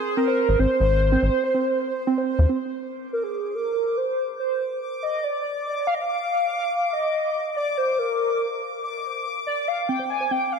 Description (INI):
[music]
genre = IDM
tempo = 142 BPM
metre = 4/4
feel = straight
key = unclear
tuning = A4 = 440 Hz
[part]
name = warbly nostalgic lead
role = melody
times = 0.0-10.6 s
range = Ab4 to Ab5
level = -24 LUFS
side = equal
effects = tremolo, analog chorus, tape echo
[part]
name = bubbling stepped-filter texture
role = texture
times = 0.0-10.6 s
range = C5 to D6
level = -31 LUFS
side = left 2 dB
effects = chorus, built-in reverb
[part]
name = warbly dusty pluck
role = arpeggios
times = 0.2-2.6, 9.9-10.4 s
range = C4 to C5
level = -26 LUFS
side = right 4 dB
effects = chorus, digital delay
[part]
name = rubbery square bass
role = bass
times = 0.5-2.5 s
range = Ab1 to Eb2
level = -19 LUFS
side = left 1 dB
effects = none
[sound]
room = moderate plate reverb, RT60 2.8 s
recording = dark, warm production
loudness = -21 LUFS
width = side -6 dB against mid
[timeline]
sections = 0.0-2.7 A section; 2.7-10.6 B section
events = none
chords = 0.0 Ab; 2.7 N.C.; 9.5 Csus24